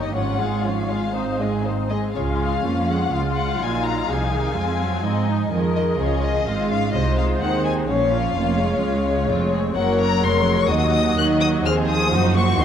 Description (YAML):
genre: quick classical-period movement for string orchestra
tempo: 126 BPM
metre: 4/4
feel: rubato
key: Db major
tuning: A4 = 441 Hz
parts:
  - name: rich chamber violin section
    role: melody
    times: 0.0-12.6 s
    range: Db5 to Gb6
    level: -27 LUFS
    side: left 6 dB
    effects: none
  - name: warm symphonic violin section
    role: second line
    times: 0.0-12.6 s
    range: C4 to F5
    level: -24 LUFS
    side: left 4 dB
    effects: none
  - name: rich chamber viola section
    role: accompaniment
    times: 0.0-12.6 s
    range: Eb3 to Ab4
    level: -25 LUFS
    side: right 2 dB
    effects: none
  - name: rich chamber cello section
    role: bass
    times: 0.0-12.6 s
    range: Db2 to Ab3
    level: -25 LUFS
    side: right 3 dB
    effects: none
  - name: rich studio double bass section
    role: bass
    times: 0.0-12.6 s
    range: F1 to Ab2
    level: -25 LUFS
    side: right 2 dB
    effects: none
room: moderate concert hall reverb, RT60 2.2 s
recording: dark, warm production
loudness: -18 LUFS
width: side -8 dB against mid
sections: 0.0-2.2 A section; 2.2-12.6 B section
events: none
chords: 0.1 Db/Ab; 1.2 Ab; 2.2 Db; 3.1 Ebm7/Db; 4.1 Ab7/C; 6.0 Db; 6.9 Ab/C; 7.9 Bbm; 9.8 Gb; 10.7 Ebm; 11.7 Cdim